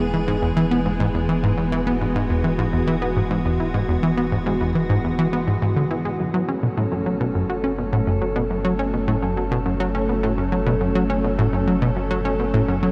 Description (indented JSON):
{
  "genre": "ambient, sequencer-driven space music",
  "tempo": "104 BPM",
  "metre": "4/4",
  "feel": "straight",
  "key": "F# minor",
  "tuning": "A4 = 439 Hz",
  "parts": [
    { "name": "evolving wavetable pad", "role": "sustained chords", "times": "0.0-12.9 s", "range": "E3 to A4", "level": "-26 LUFS", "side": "equal", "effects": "chorus, built-in reverb, shimmer reverb" },
    { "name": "plucky analog bass", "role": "riff", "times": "0.0-12.9 s", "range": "E2 to C#4", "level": "-24 LUFS", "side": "equal", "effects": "tape echo" },
    { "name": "warm sub bass", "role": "bass", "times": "0.0-12.9 s", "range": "E1 to F#1", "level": "-32 LUFS", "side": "equal", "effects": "none" }
  ],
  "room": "wet huge ambient reverb, RT60 8.5 s",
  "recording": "dreamy mix soaked in reverb",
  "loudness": "-21 LUFS",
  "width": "mono",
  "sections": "0.0-6.2 A section; 6.2-12.9 A section",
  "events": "none",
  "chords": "0.0 E; 6.2 F#m"
}